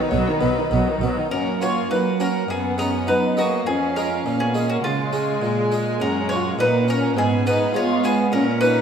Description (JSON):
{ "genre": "classical, baroque-style concerto movement with solo episodes", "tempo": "103 BPM", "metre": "4/4", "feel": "straight", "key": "F# major", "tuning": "A4 = 442 Hz", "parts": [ { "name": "bowl-back mandolin", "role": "melody", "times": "0.0-8.8 s", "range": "B3 to C#5", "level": "-24 LUFS", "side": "equal", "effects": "none" }, { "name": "warm chamber violin section", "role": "melody", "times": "0.0-8.8 s", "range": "B4 to G#5", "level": "-34 LUFS", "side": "left 5 dB", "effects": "none" }, { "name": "warm chamber violin section", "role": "second line", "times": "0.0-8.8 s", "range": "G#3 to E#4", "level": "-25 LUFS", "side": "left 3 dB", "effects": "none" }, { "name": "harpsichord", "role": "accompaniment", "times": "0.0-8.8 s", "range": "E#2 to F#4", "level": "-27 LUFS", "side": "equal", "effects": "none" }, { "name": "rich chamber viola section", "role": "accompaniment", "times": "0.0-8.8 s", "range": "D#3 to C#4", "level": "-26 LUFS", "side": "right 2 dB", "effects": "none" }, { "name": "dark chamber double bass section", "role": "bass", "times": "0.1-1.1 s", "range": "B1", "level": "-26 LUFS", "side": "right 3 dB", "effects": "none" }, { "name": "warm chamber cello section", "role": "bass", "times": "0.1-8.8 s", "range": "E#2 to G#3", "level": "-25 LUFS", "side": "right 4 dB", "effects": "none" } ], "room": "wet concert hall reverb, RT60 2.1 s", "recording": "none", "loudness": "-18 LUFS", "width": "side -7 dB against mid", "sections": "0.0-1.3 A section; 1.3-8.8 B section", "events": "none", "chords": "0.0 B; 1.3 F#; 2.5 G#m7/F#; 3.7 C#/E#; 6.0 F#; 7.2 C#7/G#" }